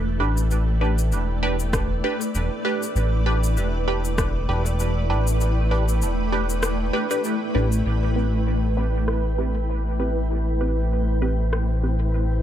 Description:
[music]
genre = ambient dub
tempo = 98 BPM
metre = 4/4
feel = swing 56% on 16ths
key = A minor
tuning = A4 = 438 Hz
[part]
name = granular cloud pad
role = sustained chords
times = 0.0-12.4 s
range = A3 to G5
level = -27 LUFS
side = right 1 dB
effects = built-in reverb
[part]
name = round analog bass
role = bass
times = 0.0-12.4 s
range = E1 to A1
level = -22 LUFS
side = equal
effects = none
[part]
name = filtered dub chord stab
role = stabs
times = 0.2-12.0 s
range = C4 to B4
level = -28 LUFS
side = right 2 dB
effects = phaser, dub echo
[part]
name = electronic cabasa and rim click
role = drums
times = 0.4-11.7 s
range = none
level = -30 LUFS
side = left 2 dB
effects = overdrive, low-pass filter on perc, studio ambience, low-pass filter on snare, dub echo
[part]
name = electronic kick drum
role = drums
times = 1.7-4.3 s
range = none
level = -27 LUFS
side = equal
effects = overdrive, studio ambience
[sound]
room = digital ambience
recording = echo-heavy mix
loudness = -20 LUFS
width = side -11 dB against mid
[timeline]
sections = 0.0-7.9 A section; 7.9-12.4 B section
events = kick drops out 5.4-7.9; filter sweep on drum 7.9-12.4; filter sweep on ambient pad 7.9-12.4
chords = 0.0 Em7; 7.9 Am9

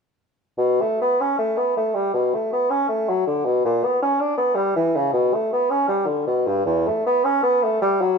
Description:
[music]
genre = classical, baroque-style fantasia for unaccompanied bassoon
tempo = 80 BPM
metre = 4/4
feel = rubato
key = B minor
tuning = A4 = 441 Hz
[part]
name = mellow bassoon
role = solo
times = 0.6-8.2 s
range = E2 to D4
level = -18 LUFS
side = equal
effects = none
[sound]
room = wet stone room reverb, RT60 1.1 s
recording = minimal, uncompressed stereo recording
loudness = -18 LUFS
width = side -5 dB against mid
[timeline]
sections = 0.6-8.2 A section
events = none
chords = none

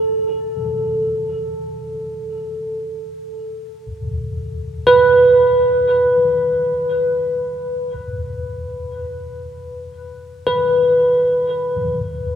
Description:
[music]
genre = ambient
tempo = free time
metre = none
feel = none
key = unclear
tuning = A4 = 440 Hz
[part]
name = bell-like tine electric piano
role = solo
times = 0.0-12.0 s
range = A4 to B4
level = -16 LUFS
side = right 1 dB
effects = lush chorus, diffuse ambient delay
[sound]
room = wet cathedral reverb, RT60 6.8 s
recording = dreamy mix soaked in reverb, cassette tape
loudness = -15 LUFS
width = side -9 dB against mid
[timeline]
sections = 0.0-3.8 A section; 3.8-12.4 B section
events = none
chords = none

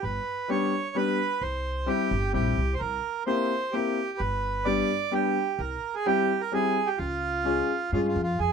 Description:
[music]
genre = musette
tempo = 129 BPM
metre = 3/4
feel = straight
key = unclear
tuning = A4 = 439 Hz
[part]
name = accordion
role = melody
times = 0.0-8.5 s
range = F4 to D5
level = -28 LUFS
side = right 5 dB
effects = none
[part]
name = upright bass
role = bass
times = 0.0-8.5 s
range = G1 to G2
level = -30 LUFS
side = equal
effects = none
[part]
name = bright upright piano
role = accompaniment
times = 0.5-8.2 s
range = G3 to Ab4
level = -27 LUFS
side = left 4 dB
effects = none
[sound]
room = light reverb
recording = faint mains hum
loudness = -24 LUFS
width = side -6 dB against mid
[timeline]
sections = 0.0-8.5 A section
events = none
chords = 0.0 G; 1.4 C; 2.8 C7; 4.2 G; 5.6 C; 7.0 Db

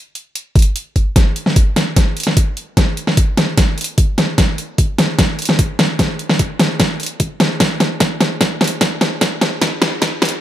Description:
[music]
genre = dubstep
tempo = 149 BPM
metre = 4/4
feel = half-time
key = none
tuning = none
[part]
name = dubstep drum kit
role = drums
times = 0.2-10.4 s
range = hi-hat, snare drum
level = -15 LUFS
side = equal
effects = overdrive
[part]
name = electronic kick drum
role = drums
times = 0.6-10.1 s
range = none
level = -14 LUFS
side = equal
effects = overdrive
[sound]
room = little or no reverb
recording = high-pass filter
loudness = -13 LUFS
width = side -12 dB against mid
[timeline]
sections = 0.0-1.2 A section; 1.2-10.4 B section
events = build-up 1.2-10.4; drum fill 1.2-10.4; filter sweep 1.2-10.4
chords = none

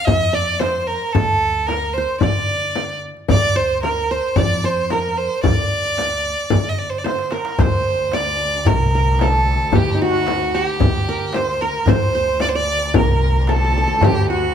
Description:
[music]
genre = Arabic maqam ensemble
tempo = 112 BPM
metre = 4/4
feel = straight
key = D maqam bayati, D maqam hijaz from 7.6 s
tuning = A4 = 438 Hz
[part]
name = clear violin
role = melody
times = 0.0-14.5 s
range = F#4 to Eb5+50c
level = -20 LUFS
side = right 2 dB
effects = none
[part]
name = qanun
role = second line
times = 0.0-14.5 s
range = Eb4+25c to F5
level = -24 LUFS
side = right 2 dB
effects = none
[part]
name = upright bass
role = bass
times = 0.1-14.5 s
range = C2 to D3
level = -23 LUFS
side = equal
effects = none
[part]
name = darbuka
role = percussion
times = 0.1-14.5 s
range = none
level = -24 LUFS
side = right 2 dB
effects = none
[part]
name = frame drum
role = percussion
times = 0.1-14.1 s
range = none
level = -21 LUFS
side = left 4 dB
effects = none
[part]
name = warm cello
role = drone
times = 7.6-14.5 s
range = D2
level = -28 LUFS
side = equal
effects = none
[sound]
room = wet large studio reverb, RT60 1.2 s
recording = band playing live in one room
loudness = -16 LUFS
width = side -8 dB against mid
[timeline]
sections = 0.0-7.6 A section; 7.6-14.5 B section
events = drum fill 7.1-7.6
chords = none

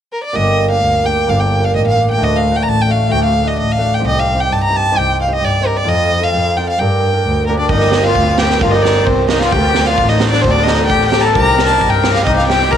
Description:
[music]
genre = klezmer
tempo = 131 BPM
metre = 2/4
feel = straight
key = G minor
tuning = A4 = 440 Hz
[part]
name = rich violin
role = melody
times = 0.1-12.8 s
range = Bb4 to Bb5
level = -16 LUFS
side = equal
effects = none
[part]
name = cimbalom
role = accompaniment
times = 0.3-12.8 s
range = A3 to C5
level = -18 LUFS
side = right 1 dB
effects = none
[part]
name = warm double bass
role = bass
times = 0.3-12.8 s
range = G1 to G2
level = -17 LUFS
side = equal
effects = none
[part]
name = accordion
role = second line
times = 7.5-12.8 s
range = Bb3 to Bb4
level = -18 LUFS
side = left 12 dB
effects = none
[part]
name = raw garage drum kit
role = drums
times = 7.7-12.8 s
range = kick drum, snare drum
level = -18 LUFS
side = right 4 dB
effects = none
[sound]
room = light reverb, studio ambience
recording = 1960s-style stereo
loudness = -11 LUFS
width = side -9 dB against mid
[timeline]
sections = 0.3-7.7 A section; 7.7-12.8 A section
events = none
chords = 0.3 Gm; 2.2 D; 4.0 Cm; 5.9 F; 6.8 Gm; 9.5 D; 11.4 Cm

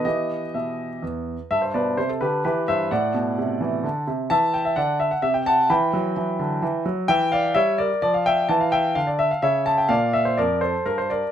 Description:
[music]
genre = classical-period piano sonatina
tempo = 128 BPM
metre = 3/4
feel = straight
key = E minor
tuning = A4 = 440 Hz
[part]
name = clear concert grand piano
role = solo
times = 0.0-11.3 s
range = E2 to B5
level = -20 LUFS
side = equal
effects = none
[sound]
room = light reverb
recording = minimal, uncompressed stereo recording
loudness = -20 LUFS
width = side -10 dB against mid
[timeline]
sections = 0.0-1.5 A section; 1.5-11.3 A section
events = none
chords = 0.1 Em; 1.5 Gadd11; 2.4 Em; 2.9 Am; 4.3 Dadd9; 5.2 Am/C; 5.7 Em; 7.1 Em7b5; 8.0 Fsus2; 8.5 Dmadd9; 9.4 N.C.; 9.9 Bb

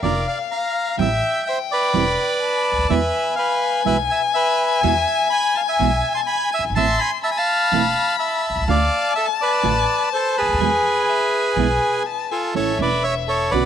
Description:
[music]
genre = tango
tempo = 125 BPM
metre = 4/4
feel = rubato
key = unclear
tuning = A4 = 439 Hz
[part]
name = bandoneon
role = melody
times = 0.0-13.7 s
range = F4 to C6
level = -19 LUFS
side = right 1 dB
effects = none
[part]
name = warm violin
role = second line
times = 0.0-13.7 s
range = E5 to C6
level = -23 LUFS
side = left 9 dB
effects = none
[part]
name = nylon-string guitar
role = accompaniment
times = 0.0-13.6 s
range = B2 to F#4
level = -23 LUFS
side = right 10 dB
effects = none
[part]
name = upright bass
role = bass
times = 0.0-13.7 s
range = E1 to E2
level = -25 LUFS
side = equal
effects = none
[sound]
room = light reverb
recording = 1960s-style stereo with parts hard left and right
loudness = -17 LUFS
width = side -9 dB against mid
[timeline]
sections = 0.0-12.5 A section; 12.5-13.7 B section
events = none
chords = 0.0 Bb; 1.0 Am7; 2.9 E; 6.8 Am; 8.7 Dm; 10.6 E; 12.5 A

